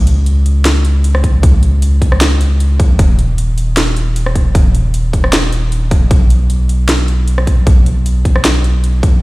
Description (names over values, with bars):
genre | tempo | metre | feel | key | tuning
future bass | 154 BPM | 4/4 | swing 53% on 16ths, half-time | unclear | A4 = 440 Hz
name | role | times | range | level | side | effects
saturated sub bass | bass | 0.0-9.2 s | Eb1 to Db2 | -12 LUFS | equal | sidechain pumping
trap drum kit | drums | 0.1-9.1 s | hi-hat, rim click, snare drum | -18 LUFS | equal | none
electronic kick drum | drums | 1.2-9.1 s | none | -11 LUFS | equal | none
room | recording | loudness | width
little or no reverb | played on a big sound system in a bare room, stone room reverb | -10 LUFS | side -20 dB against mid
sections
0.0-9.2 A section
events
none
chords
none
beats
0.26 0.65 1.04 | 1.43 1.82 2.21 2.60 | 2.99 3.38 3.77 4.16 | 4.55 4.94 5.33 5.72 | 6.11 6.50 6.89 7.28 | 7.67 8.06 8.45 8.84